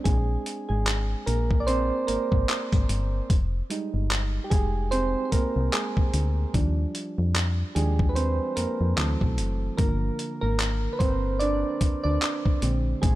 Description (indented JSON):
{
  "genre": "contemporary R&B",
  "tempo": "74 BPM",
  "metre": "4/4",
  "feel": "swing 58% on 16ths",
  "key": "unclear",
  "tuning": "A4 = 440 Hz",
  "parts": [
    { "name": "soft electric-piano-like synth keys", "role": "accompaniment", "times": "0.0-13.2 s", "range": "D3 to D5", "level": "-28 LUFS", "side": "right 2 dB", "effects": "chorus" },
    { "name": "solid FM bass", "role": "bass", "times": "0.1-13.2 s", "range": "F1 to F2", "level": "-26 LUFS", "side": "equal", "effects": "none" },
    { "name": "dusty soul sampler-style drum kit", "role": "drums", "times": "0.1-13.2 s", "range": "handclaps, hi-hat, kick drum", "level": "-25 LUFS", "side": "equal", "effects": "none" }
  ],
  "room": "little or no reverb",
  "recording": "dark, warm production",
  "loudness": "-23 LUFS",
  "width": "side -16 dB against mid",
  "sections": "0.0-13.2 A section",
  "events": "synth keys solo 0.0-13.2",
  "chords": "0.0 Bb7; 3.3 Fm7; 6.5 Ebmaj7; 9.0 D7; 9.8 Gm7; 12.6 Bb7",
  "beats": "| 0.05 0.86 1.68 2.49 | 3.30 4.11 4.92 5.73 | 6.54 7.35 8.16 8.97 | 9.78 10.59 11.40 12.22 | 13.03"
}